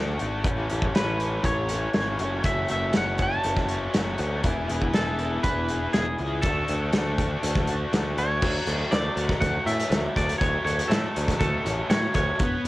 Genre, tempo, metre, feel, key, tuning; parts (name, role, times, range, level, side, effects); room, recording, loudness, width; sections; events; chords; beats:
indie rock; 120 BPM; 4/4; straight; A4 = 440 Hz
raw garage guitar; riff; 0.0-12.7 s; E3 to G#4; -30 LUFS; left 2 dB; overdrive, cassette tape
scooped high-gain guitar; riff; 0.0-12.7 s; E3 to G#4; -36 LUFS; right 4 dB; distortion, wide subtle chorus, cassette tape
modern bright picked electric bass; bass; 0.0-12.7 s; E1 to A2; -29 LUFS; equal
loose indie drum kit; drums; 0.2-12.7 s; crash cymbal, hi-hat, kick drum, snare drum; -27 LUFS; equal; cassette tape
twangy electric guitar; melody; 1.0-12.7 s; G#4 to A5; -29 LUFS; equal; cassette tape
light reverb; home recording on cassette; -22 LUFS; side -18 dB against mid
0.0-8.4 A section; 8.4-12.7 B section
0.5 Aadd9; 2.2 F#m; 4.5 E; 6.4 D; 8.4 Dmaj7
| 0.46 0.96 1.46 1.96 | 2.46 2.96 3.46 3.96 | 4.46 4.96 5.45 5.95 | 6.45 6.95 7.44 7.94 | 8.44 8.93 9.43 9.93 | 10.42 10.92 11.42 11.91 | 12.41